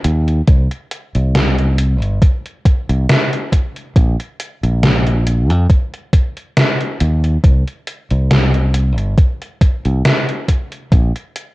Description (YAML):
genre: vaporwave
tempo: 69 BPM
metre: 4/4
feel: swing 54% on 16ths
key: C minor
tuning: A4 = 440 Hz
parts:
  - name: modern bright fingered electric bass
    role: bass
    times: 0.0-11.1 s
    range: G1 to F2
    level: -14 LUFS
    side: equal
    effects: none
  - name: gated 80s digital drum machine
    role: drums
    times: 0.0-11.5 s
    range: hi-hat, snare drum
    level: -16 LUFS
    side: equal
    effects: gated reverb, gated reverb snare, overdrive, vintage 12-bit sampler grit
  - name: electronic kick drum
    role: drums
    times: 0.5-11.1 s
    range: none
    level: -11 LUFS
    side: equal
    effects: overdrive, vintage 12-bit sampler grit
room: little or no reverb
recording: cassette tape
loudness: -13 LUFS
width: side -20 dB against mid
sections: 0.0-11.5 A section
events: none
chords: none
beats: | 0.48 1.35 2.22 3.09 | 3.96 4.83 5.70 6.57 | 7.44 8.31 9.18 10.05 | 10.92